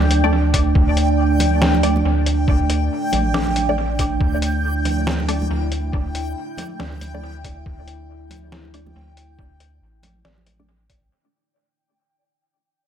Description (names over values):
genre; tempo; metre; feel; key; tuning
deep dubstep; 139 BPM; 4/4; swing 61% on 16ths, half-time; unclear; A4 = 440 Hz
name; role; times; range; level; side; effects
deep dark ambient pad; sustained chords; 0.0-11.1 s; A3 to D5; -24 LUFS; right 4 dB; chorus, built-in reverb
soft dub sub bass; bass; 0.0-11.1 s; A1 to D2; -21 LUFS; equal; none
congas; percussion; 0.0-10.7 s; none; -29 LUFS; right 2 dB; dub echo
backwards swelling texture; texture; 0.0-11.1 s; G5; -27 LUFS; left 1 dB; built-in reverb
trip hop sampler-style drum kit; drums; 0.1-11.0 s; hi-hat, snare drum; -25 LUFS; equal; dub echo
filtered dub chord stab; stabs; 0.2-10.7 s; A3 to D5; -27 LUFS; left 1 dB; phaser, dub echo
electronic kick drum; drums; 0.5-11.0 s; none; -20 LUFS; equal; none
room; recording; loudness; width
light reverb; echo-heavy mix; -16 LUFS; side -9 dB against mid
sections
0.0-11.1 A section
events
fade-out 0.0-11.1; filter sweep on synth stab 0.0-11.1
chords
0.0 D5